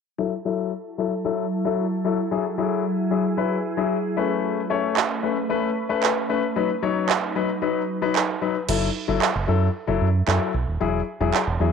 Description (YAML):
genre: dance-pop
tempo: 113 BPM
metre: 4/4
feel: straight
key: F# minor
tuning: A4 = 444 Hz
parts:
  - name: warm concert grand piano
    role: accompaniment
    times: 0.2-11.7 s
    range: F#3 to C#5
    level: -24 LUFS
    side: left 8 dB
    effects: low-pass filter
  - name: glassy FM pad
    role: sustained chords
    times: 0.9-8.7 s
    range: F#3 to B4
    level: -27 LUFS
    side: right 1 dB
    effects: ensemble chorus, built-in reverb, low-pass filter
  - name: deep house drum kit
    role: drums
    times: 5.0-11.5 s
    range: crash cymbal, handclaps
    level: -24 LUFS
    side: right 8 dB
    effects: none
  - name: deep dub fingered electric bass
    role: bass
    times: 8.7-11.7 s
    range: D#1 to F#2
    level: -22 LUFS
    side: right 2 dB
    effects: none
room: moderate spring reverb, RT60 1.5 s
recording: 1960s-style stereo with parts hard left and right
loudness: -21 LUFS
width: side -6 dB against mid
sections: 0.2-8.7 A section; 8.7-11.7 B section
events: filter sweep 0.2-8.7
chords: 0.2 F#m7; 2.3 Eadd9; 4.2 Aadd9; 6.6 B; 8.7 F#m7; 10.8 Eadd9